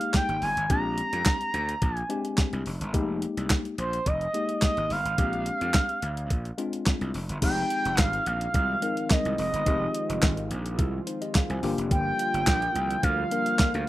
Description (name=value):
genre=early-eighties boogie funk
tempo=107 BPM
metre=4/4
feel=straight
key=F dorian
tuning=A4 = 440 Hz
part: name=expressive portamento lead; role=melody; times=0.0-13.9 s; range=C5 to Bb5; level=-28 LUFS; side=right 1 dB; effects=chorus
part: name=mellow tine electric piano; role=accompaniment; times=0.0-13.9 s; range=Ab3 to Ab5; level=-32 LUFS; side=left 4 dB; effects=none
part: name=crisp 8-bit digital drum machine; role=drums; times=0.0-13.9 s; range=crash cymbal, handclaps, hi-hat, kick drum, snare drum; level=-25 LUFS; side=equal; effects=none
part: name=gritty slap bass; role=bass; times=0.3-13.8 s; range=F1 to F2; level=-31 LUFS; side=equal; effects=overdrive
part: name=warm analog pad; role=sustained chords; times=7.4-13.9 s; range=D3 to F4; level=-35 LUFS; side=right 1 dB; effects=chorus
room=light reverb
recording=rough home demo mix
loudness=-24 LUFS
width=side -15 dB against mid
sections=0.0-7.4 A section; 7.4-13.9 B section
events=none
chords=0.0 Fm11; 0.7 Bb13; 2.9 Fm11; 5.2 Bb13; 7.4 Fm7; 11.6 Gm7